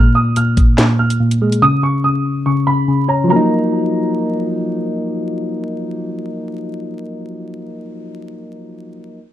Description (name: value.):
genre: hip hop, drill.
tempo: 143 BPM.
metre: 4/4.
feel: half-time.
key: Eb minor.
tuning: A4 = 440 Hz.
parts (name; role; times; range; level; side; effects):
dark concert grand piano; melody; 0.0-4.5 s; Bb5 to F6; -19 LUFS; right 4 dB; low-pass filter.
soft electric-piano-like synth keys; accompaniment; 0.0-9.2 s; Bb2 to Eb4; -17 LUFS; left 1 dB; chorus, low-pass filter.
drill drum kit; drums; 0.4-1.6 s; handclaps, hi-hat, kick drum, snare drum; -13 LUFS; equal; none.
room: digital ambience.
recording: dark, warm production, vinyl crackle.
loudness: -14 LUFS.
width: side -12 dB against mid.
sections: 0.0-3.3 A section; 3.3-6.7 B section.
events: none.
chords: 0.0 Bb5; 1.6 N.C.; 3.3 Ebmadd9.